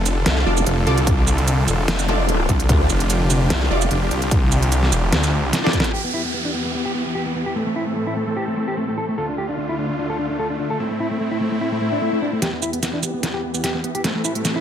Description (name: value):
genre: heavy wobble dubstep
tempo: 148 BPM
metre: 4/4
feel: swing 53% on 16ths, half-time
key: E phrygian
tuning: A4 = 440 Hz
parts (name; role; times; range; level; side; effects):
- supersaw chords; sustained chords; 0.0-14.6 s; D2 to A4; -25 LUFS; equal; sidechain pumping, low-pass filter
- snarling distorted saw bass; bass; 0.0-5.5 s; E1 to D2; -19 LUFS; equal; distortion, overdrive
- dubstep drum kit; drums; 0.1-5.9, 12.4-14.5 s; hi-hat, shaker, snare drum; -23 LUFS; right 1 dB; low-pass filter on hats, low-pass filter on perc, low-pass filter on snare
- growl bass; bass; 0.3-3.9 s; F1 to D2; -19 LUFS; equal; distortion, chorus, overdrive
- orchestra-hit-like synth stab; stabs; 0.5-5.8 s; F4 to D5; -26 LUFS; right 1 dB; built-in reverb, digital delay
- electronic kick drum; drums; 1.1-5.8 s; none; -19 LUFS; equal; none
- zap, downlifter, swell and riser; sound effects; 2.1-2.2, 5.9-14.6 s; none; -29 LUFS; left 2 dB; none
- mellow electric guitar; melody; 5.9-14.6 s; A3 to A4; -24 LUFS; equal; low-pass filter, digital delay
room: light reverb, digital ambience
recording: none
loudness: -18 LUFS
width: side -9 dB against mid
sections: 0.0-5.9 A section; 5.9-12.4 B section; 12.4-14.6 C section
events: drop 0.0-5.9; drum fill 5.5-5.9, 12.4-14.6; filter sweep on supersaw synth 5.9-12.4, 12.4-14.6; swell 11.7-12.4; build-up 12.4-14.6; filter sweep on clean electric guitar 12.4-14.6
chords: 0.0 Dm; 5.9 Em; 7.6 Am; 9.2 Dm; 10.8 Am; 12.4 Em; 14.0 Am